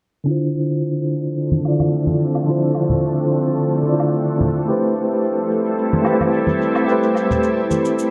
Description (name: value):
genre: sunset chillout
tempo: 109 BPM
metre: 4/4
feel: swing 54% on 16ths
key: D dorian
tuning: A4 = 440 Hz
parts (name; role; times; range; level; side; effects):
- mellow tine electric piano; accompaniment; 0.2-8.1 s; D3 to D5; -20 LUFS; equal; low-pass filter, digital delay
- shimmering ambient pad; sustained chords; 1.3-8.1 s; F3 to A4; -25 LUFS; equal; chorus, built-in reverb
- cabasa and woodblock; drums; 0.3-8.1 s; none; -32 LUFS; equal; none
- congas; percussion; 1.5-7.8 s; none; -25 LUFS; equal; none
room: moderate plate reverb, RT60 1.2 s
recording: low-pass filter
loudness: -19 LUFS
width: mono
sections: 0.3-8.1 A section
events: filter sweep on tine electric piano 0.3-8.1; filter sweep on ambient pad 0.3-8.1; filter sweep 0.3-8.1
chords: 0.3 Dm7; 4.7 Am7